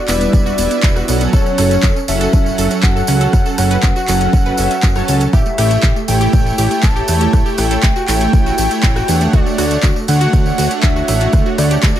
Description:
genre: progressive house.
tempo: 120 BPM.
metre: 4/4.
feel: straight.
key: unclear.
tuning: A4 = 441 Hz.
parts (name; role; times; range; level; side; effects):
soft octave-layered synth lead; melody; 0.0-12.0 s; C#5 to A5; -20 LUFS; left 2 dB; chorus, sidechain pumping, tape echo.
wide unison pluck; arpeggios; 0.0-12.0 s; A3 to C#5; -22 LUFS; equal; sidechain pumping, tape echo.
soft supersaw; stabs; 0.1-11.8 s; F#3 to A5; -19 LUFS; right 4 dB; sidechain pumping, tape echo.
fat analog bass; bass; 0.1-11.9 s; E1 to E2; -17 LUFS; equal; sidechain pumping.
house drum kit; drums; 0.1-11.9 s; handclaps, hi-hat, rim click; -22 LUFS; equal; none.
tambourine; percussion; 0.1-12.0 s; none; -28 LUFS; right 3 dB; none.
electronic kick drum; drums; 0.3-11.9 s; none; -13 LUFS; equal; none.
room: digital ambience.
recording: none.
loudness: -11 LUFS.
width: side -11 dB against mid.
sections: 0.0-12.0 A section.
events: none.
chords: 0.0 Em; 1.3 F#m; 5.3 A7; 9.3 Dmaj7.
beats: 0.33 0.83 | 1.33 1.83 2.33 2.83 | 3.33 3.83 4.33 4.83 | 5.33 5.83 6.33 6.83 | 7.33 7.83 8.33 8.83 | 9.33 9.83 10.33 10.83 | 11.33 11.83.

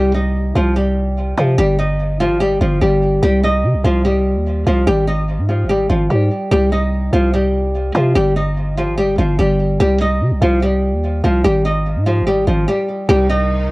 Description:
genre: hip hop, drill.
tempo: 146 BPM.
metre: 4/4.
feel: half-time.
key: C minor.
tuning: A4 = 438 Hz.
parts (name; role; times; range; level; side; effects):
flamenco guitar; melody; 0.0-13.7 s; F3 to Eb5; -17 LUFS; equal; digital delay.
growling 808-style bass; bass; 0.0-13.7 s; G1 to C3; -16 LUFS; equal; none.
rich symphonic string section; sustained chords; 13.1-13.7 s; C3 to Eb4; -30 LUFS; right 1 dB; none.
room: small room ambience.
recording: worn, warbling old tape, cassette tape, warbly pitch drift.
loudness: -13 LUFS.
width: side -21 dB against mid.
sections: 0.0-13.1 A section.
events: stop 12.7-13.1.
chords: 0.0 Cmadd11; 1.6 F7sus2/G; 3.2 Cm; 4.9 Ab5; 6.5 Cm; 8.2 F7sus2/G; 9.8 Cm; 11.4 Ab5; 13.1 Cm.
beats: 0.35 0.76 1.17 | 1.58 1.99 2.40 2.81 | 3.23 3.64 4.05 4.46 | 4.87 5.28 5.69 6.10 | 6.51 6.92 7.33 7.75 | 8.16 8.57 8.98 9.39 | 9.80 10.21 10.62 11.03 | 11.44 11.86 12.27 12.68 | 13.09 13.50.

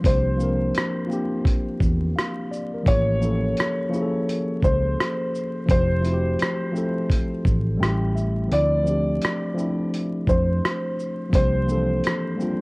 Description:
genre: lo-fi hip hop.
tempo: 85 BPM.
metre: 4/4.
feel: swing 65% on 16ths.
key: D minor.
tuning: A4 = 440 Hz.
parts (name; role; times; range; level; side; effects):
tine electric piano; accompaniment; 0.0-12.6 s; E3 to G5; -25 LUFS; equal; cassette tape.
vintage muted fingered electric bass; bass; 0.0-12.0 s; F1 to F2; -23 LUFS; equal; none.
dusty soul sampler-style drum kit; drums; 0.0-12.6 s; hi-hat, kick drum, rim click, shaker; -23 LUFS; equal; none.
felt-muted upright piano; melody; 0.1-12.6 s; C5 to D5; -26 LUFS; equal; analog delay.
room: light reverb.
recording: worn, warbling old tape, cassette tape, vinyl crackle, warbly pitch drift.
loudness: -20 LUFS.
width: side -25 dB against mid.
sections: 0.0-12.6 A section.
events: tine electric piano fill 7.4-8.5; kick muted 8.5-9.2.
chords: 0.0 C9sus4; 2.9 A7b9b13; 5.7 Fmaj7; 7.8 A7; 8.5 Dm9; 11.3 C9sus4.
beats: | 0.04 0.74 1.45 2.15 | 2.86 3.57 4.27 4.98 | 5.68 6.39 7.10 7.80 | 8.51 9.21 9.92 10.62 | 11.33 12.04.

